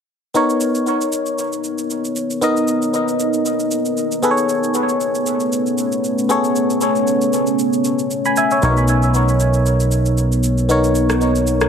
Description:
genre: amapiano.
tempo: 116 BPM.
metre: 4/4.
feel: swing 55% on 16ths.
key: B major.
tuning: A4 = 441 Hz.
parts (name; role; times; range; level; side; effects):
barking FM electric piano; accompaniment; 0.3-11.7 s; B3 to B5; -17 LUFS; left 1 dB; chorus, phaser, tape echo.
electronic shaker and rim click; drums; 0.3-11.7 s; none; -26 LUFS; right 2 dB; tape echo.
deep dark ambient pad; sustained chords; 1.9-11.7 s; A3 to A#4; -22 LUFS; right 2 dB; chorus, built-in reverb.
plucky analog bass; bass; 8.6-11.7 s; B1; -16 LUFS; right 1 dB; none.
room: light reverb, digital ambience.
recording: echo-heavy mix.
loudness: -15 LUFS.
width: side -7 dB against mid.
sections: 0.3-11.7 A section.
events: none.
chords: 0.3 Bmaj9; 4.2 Amaj9; 8.6 Bmaj9.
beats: | 0.35 0.87 1.38 1.90 | 2.42 2.94 3.45 3.97 | 4.49 5.00 5.52 6.04 | 6.56 7.07 7.59 8.11 | 8.62 9.14 9.66 10.18 | 10.69 11.21.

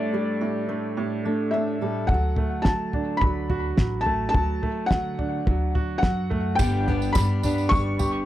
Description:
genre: indie folk with a building arrangement.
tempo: 107 BPM.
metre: 4/4.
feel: straight.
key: D major.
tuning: A4 = 439 Hz.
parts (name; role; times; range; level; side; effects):
felt-muted upright piano; melody; 0.0-8.3 s; D5 to C#6; -28 LUFS; left 2 dB; tape echo.
fingerpicked steel-string acoustic guitar; accompaniment; 0.0-4.3 s; A2 to A4; -30 LUFS; left 2 dB; none.
bright upright piano; arpeggios; 0.0-8.3 s; A2 to G4; -29 LUFS; right 5 dB; none.
upright bass; bass; 2.1-8.2 s; G1 to D3; -27 LUFS; equal; none.
cloth-damped thuddy drum kit; drums; 2.1-8.1 s; kick drum, snare drum, toms; -24 LUFS; equal; none.
picked steel-string acoustic guitar; accompaniment; 6.6-8.3 s; G2 to G4; -28 LUFS; left 5 dB; none.
tambourine; percussion; 6.6-8.1 s; none; -39 LUFS; right 9 dB; none.
room: little or no reverb.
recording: dry, close 1970s-style studio recording.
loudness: -22 LUFS.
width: side -13 dB against mid.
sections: 0.0-2.1 A section; 2.1-8.3 B section.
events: none.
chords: 0.0 A7sus4; 2.1 D; 6.6 G.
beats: 0.41 0.97 1.53 | 2.10 2.66 3.22 3.78 | 4.34 4.91 5.47 6.03 | 6.59 7.16 7.72.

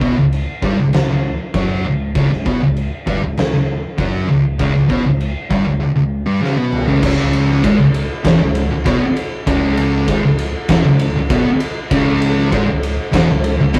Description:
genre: stoner and doom metal.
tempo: 98 BPM.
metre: 4/4.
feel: straight.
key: C# minor.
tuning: A4 = 440 Hz.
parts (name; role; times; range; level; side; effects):
thick fuzz guitar; riff; 0.0-13.8 s; C#2 to B3; -22 LUFS; equal; distortion.
thick fuzz guitar; riff; 0.0-13.8 s; C#2 to B3; -19 LUFS; equal; distortion.
picked electric bass; bass; 0.0-13.8 s; C#1 to B1; -27 LUFS; equal; overdrive.
oversized low-tuned drum kit; drums; 0.0-13.8 s; crash cymbal, kick drum, ride cymbal, snare drum, toms; -22 LUFS; equal; none.
room: moderate studio reverb, RT60 0.6 s.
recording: rough rehearsal-room recording, warm saturation.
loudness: -16 LUFS.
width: mono.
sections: 0.0-7.0 A section; 7.0-13.8 B section.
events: drum fill 6.4-7.0.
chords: 0.0 Gmaj7#11/C#; 7.0 C#m.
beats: 0.33 0.94 1.54 | 2.15 2.76 3.37 3.98 | 4.59 5.20 5.82 6.42 | 7.04 7.64 8.26 8.87 | 9.47 10.09 10.70 11.30 | 11.91 12.53 13.14 13.75.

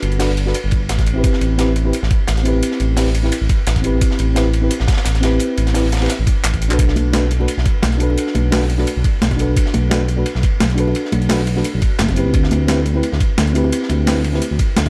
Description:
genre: liquid drum and bass.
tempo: 173 BPM.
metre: 4/4.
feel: swing 54% on 16ths.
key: A dorian.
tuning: A4 = 439 Hz.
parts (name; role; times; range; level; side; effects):
mellow FM electric piano; accompaniment; 0.0-14.4 s; C4 to B4; -23 LUFS; equal; chorus, dub echo.
smooth synth bass; bass; 0.0-14.9 s; F#1 to D2; -20 LUFS; equal; none.
breakbeat sampler-style drum kit; drums; 0.0-14.9 s; handclaps, hi-hat, snare drum; -25 LUFS; equal; overdrive.
crunchy breakbeat drum kit; drums; 0.0-14.9 s; hi-hat, ride cymbal, snare drum; -29 LUFS; equal; high-pass filter on cymbals, high-pass filter on hats, high-pass filter on snare, high-pass filter on room.
electronic kick drum; drums; 0.7-14.9 s; none; -19 LUFS; equal; none.
congas and bongos; percussion; 7.0-14.9 s; none; -28 LUFS; equal; none.
room: studio ambience.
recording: dark, warm production.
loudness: -17 LUFS.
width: mono.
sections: 0.0-14.9 A section.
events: drum fill 6.4-6.8.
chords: 0.0 Gmaj9; 1.1 Am9; 6.8 Bm7; 12.3 D13sus4.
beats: 0.20 0.55 0.89 | 1.24 1.59 1.94 2.28 | 2.63 2.98 3.32 3.67 | 4.02 4.36 4.71 5.06 | 5.40 5.75 6.10 6.44 | 6.79 7.14 7.48 7.83 | 8.18 8.52 8.87 9.22 | 9.56 9.91 10.26 10.61 | 10.95 11.30 11.65 11.99 | 12.34 12.69 13.03 13.38 | 13.73 14.07 14.42 14.77.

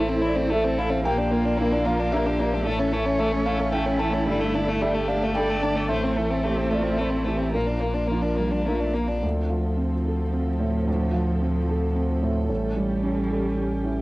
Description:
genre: neoclassical piano and strings.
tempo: 110 BPM.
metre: 3/4.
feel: rubato.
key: D minor.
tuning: A4 = 443 Hz.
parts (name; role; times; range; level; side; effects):
rich violin; melody; 0.0-9.2 s; G3 to E4; -26 LUFS; left 2 dB; cassette tape.
rich cello; second line; 0.0-14.0 s; F3 to Bb3; -31 LUFS; right 2 dB; cassette tape.
felt-muted upright piano; accompaniment; 0.0-14.0 s; D2 to A5; -26 LUFS; right 1 dB; cassette tape.
warm viola; accompaniment; 0.0-9.0 s; E4 to D5; -32 LUFS; right 1 dB; cassette tape.
rich studio string section; sustained chords; 0.0-14.0 s; A3 to Bb4; -34 LUFS; left 1 dB; cassette tape.
saturated sub bass; bass; 0.0-14.0 s; G1 to D2; -28 LUFS; equal; none.
room: light reverb, small room ambience.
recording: home recording on cassette.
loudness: -21 LUFS.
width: side -19 dB against mid.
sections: 0.0-9.2 A section; 9.2-14.0 B section.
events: none.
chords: 0.0 Am; 1.1 Bb; 2.7 A; 4.3 Gsus2; 5.9 Am; 7.5 Bb; 9.2 Dm7; 12.5 A7.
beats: 0.52 | 1.05 1.59 2.12 | 2.66 3.19 3.73 | 4.27 4.81 5.35 | 5.90 6.44 6.99 | 7.55 8.11 8.68 | 9.23 9.78 10.33 | 10.87 11.42 11.96 | 12.50 13.03 13.57.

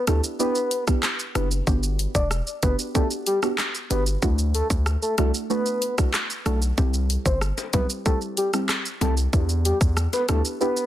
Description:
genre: dancehall.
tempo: 94 BPM.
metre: 4/4.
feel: straight.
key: E minor.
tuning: A4 = 441 Hz.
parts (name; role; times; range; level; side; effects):
soft octave-layered synth lead; melody; 0.0-10.9 s; G4 to D5; -27 LUFS; left 1 dB; chorus, tremolo, ping-pong delay.
deep mellow chord stab; accompaniment; 0.1-10.9 s; G3 to G4; -28 LUFS; right 2 dB; chorus, sidechain pumping.
hard-hitting 808-style bass; bass; 0.1-10.4 s; E1 to E2; -23 LUFS; equal; none.
island pop drum kit; drums; 0.1-10.9 s; handclaps, hi-hat, kick drum, rim click, shaker; -24 LUFS; equal; none.
bongos; percussion; 7.6-10.4 s; none; -35 LUFS; left 6 dB; none.
room: digital ambience.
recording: dense, heavily limited modern master.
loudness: -21 LUFS.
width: side -13 dB against mid.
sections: 0.0-10.9 A section.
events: none.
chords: 0.0 Em7; 1.7 Gmaj7; 4.2 Dadd9; 6.8 C; 9.3 Em7.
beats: 0.40 1.03 | 1.67 2.31 2.95 3.59 | 4.22 4.86 5.50 6.14 | 6.78 7.42 8.05 8.69 | 9.33 9.97 10.61.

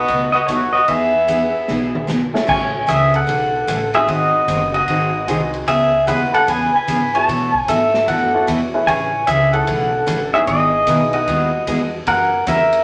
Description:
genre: country, western swing.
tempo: 150 BPM.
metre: 4/4.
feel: swing 65% on 8ths.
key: E major.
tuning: A4 = 439 Hz.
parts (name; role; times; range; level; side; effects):
pedal steel guitar; melody; 0.0-12.8 s; F#4 to A5; -18 LUFS; equal; none.
bright fiddle; second line; 0.0-2.0 s; A3 to B3; -30 LUFS; equal; none.
warm upright piano; accompaniment; 0.0-11.5 s; G#3 to C#5; -26 LUFS; equal; none.
upright bass; bass; 0.0-12.8 s; F#1 to B2; -29 LUFS; equal; none.
picked steel-string acoustic guitar; accompaniment; 0.1-12.6 s; B2 to G#4; -25 LUFS; equal; none.
swinging big-band drum kit; drums; 0.1-12.8 s; crash cymbal, hi-hat, kick drum, ride cymbal, snare drum, toms; -31 LUFS; equal; none.
room: wet small room reverb, RT60 0.5 s.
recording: tube saturation.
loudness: -17 LUFS.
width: mono.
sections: 0.0-2.5 A section; 2.5-12.8 B section.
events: drum fill 1.7-2.5.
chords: 0.0 B7; 0.9 Emaj7; 2.5 Amaj7; 4.1 G#7; 5.7 C#m7; 7.3 B9sus4; 8.9 Amaj7; 10.5 Emaj7/G#; 12.1 F#7.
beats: 0.09 0.49 | 0.89 1.29 1.69 2.09 | 2.49 2.88 3.29 3.68 | 4.08 4.48 4.88 5.28 | 5.68 6.08 6.48 6.88 | 7.28 7.68 8.08 8.48 | 8.88 9.28 9.68 10.08 | 10.48 10.88 11.28 11.67 | 12.07 12.47.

